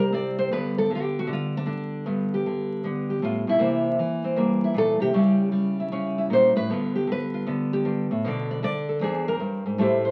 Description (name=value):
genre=solo jazz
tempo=155 BPM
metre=4/4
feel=swing 66% on 8ths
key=G mixolydian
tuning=A4 = 440 Hz
part: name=nylon-string guitar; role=solo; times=0.0-10.1 s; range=E2 to D5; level=-24 LUFS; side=equal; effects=none
room=wet small room reverb, RT60 0.5 s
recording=very old 78 rpm record, vinyl crackle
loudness=-25 LUFS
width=mono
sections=0.0-10.1 A section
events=nylon-string guitar solo 0.0-10.1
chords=0.0 C; 0.5 G; 3.6 C7; 5.1 C#dim7; 6.7 G7; 8.2 Bm7; 9.0 E7alt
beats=0.12 | 0.51 0.89 1.28 1.66 | 2.05 2.44 2.82 3.21 | 3.60 3.98 4.37 4.75 | 5.14 5.53 5.91 6.30 | 6.68 7.07 7.46 7.84 | 8.23 8.62 9.00 9.39 | 9.77